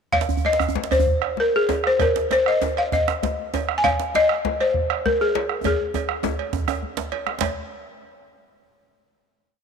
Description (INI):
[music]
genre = west african traditional, West African drum ensemble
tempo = 128-142 BPM (dotted quarters)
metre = 12/8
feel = straight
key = Ab major pentatonic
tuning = A4 = 439 Hz
[part]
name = balafon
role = melody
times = 0.1-7.1 s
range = Ab4 to Ab5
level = -20 LUFS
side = left 2 dB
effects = none
[part]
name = bombo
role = percussion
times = 0.1-7.5 s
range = none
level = -28 LUFS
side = right 5 dB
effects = none
[part]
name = cowbell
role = percussion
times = 0.1-7.5 s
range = none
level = -32 LUFS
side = right 8 dB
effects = none
[part]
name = djembe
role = percussion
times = 0.1-7.5 s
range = none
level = -31 LUFS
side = left 7 dB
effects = none
[part]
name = djembe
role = percussion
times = 0.2-7.5 s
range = none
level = -28 LUFS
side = right 4 dB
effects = none
[sound]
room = wet plate reverb, RT60 2.7 s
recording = 1960s-style stereo with parts hard left and right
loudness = -19 LUFS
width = side -6 dB against mid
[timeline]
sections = 0.1-7.4 A section; 7.4-9.1 final hit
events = speeding up 0.1-9.1; drum fill 5.7-7.4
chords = none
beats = | 0.13 0.60 1.07 1.53 | 2.00 2.46 2.92 3.38 | 3.84 4.30 4.75 5.20 | 5.65 6.10 6.54 6.98 | 7.41